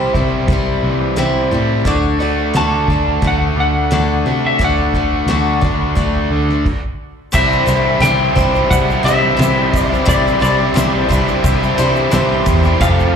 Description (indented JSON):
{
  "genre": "folk rock and heartland rock",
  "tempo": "88 BPM",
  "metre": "4/4",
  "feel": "straight",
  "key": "unclear",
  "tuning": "A4 = 441 Hz",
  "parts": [
    { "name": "picked swing-style acoustic guitar", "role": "accompaniment", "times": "0.0-13.2 s", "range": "C3 to D5", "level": "-21 LUFS", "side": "left 2 dB", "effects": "slapback echo" },
    { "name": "biting overdriven guitar", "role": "riff", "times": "0.0-13.2 s", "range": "F2 to G4", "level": "-18 LUFS", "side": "equal", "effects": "slapback echo" },
    { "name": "picked electric bass", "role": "bass", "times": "0.0-13.1 s", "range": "F1 to C3", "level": "-18 LUFS", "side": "equal", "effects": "none" },
    { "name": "cloth-damped thuddy drum kit", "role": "drums", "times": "0.1-13.0 s", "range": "crash cymbal, hi-hat, kick drum, ride cymbal, snare drum", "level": "-20 LUFS", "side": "equal", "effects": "none" },
    { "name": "electric slide guitar", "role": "melody", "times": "2.6-13.2 s", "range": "D5 to A5", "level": "-18 LUFS", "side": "equal", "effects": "slapback echo, analog delay" },
    { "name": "clear concert grand piano", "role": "accompaniment", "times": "7.3-13.2 s", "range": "G4 to F5", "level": "-26 LUFS", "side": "right 2 dB", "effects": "none" },
    { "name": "tonewheel organ", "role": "sustained chords", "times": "7.3-13.2 s", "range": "G4 to D6", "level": "-26 LUFS", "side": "right 2 dB", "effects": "none" },
    { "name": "egg shaker", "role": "percussion", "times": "7.3-13.1 s", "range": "none", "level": "-34 LUFS", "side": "right 7 dB", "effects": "none" }
  ],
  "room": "light reverb, studio ambience",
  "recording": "live gig heard through the venue's PA, club reverb",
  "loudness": "-12 LUFS",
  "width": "side -7 dB against mid",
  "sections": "0.0-7.3 A section; 7.3-13.2 B section",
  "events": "stop 6.7-7.3",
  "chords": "0.0 C; 1.9 D; 7.3 Cadd9"
}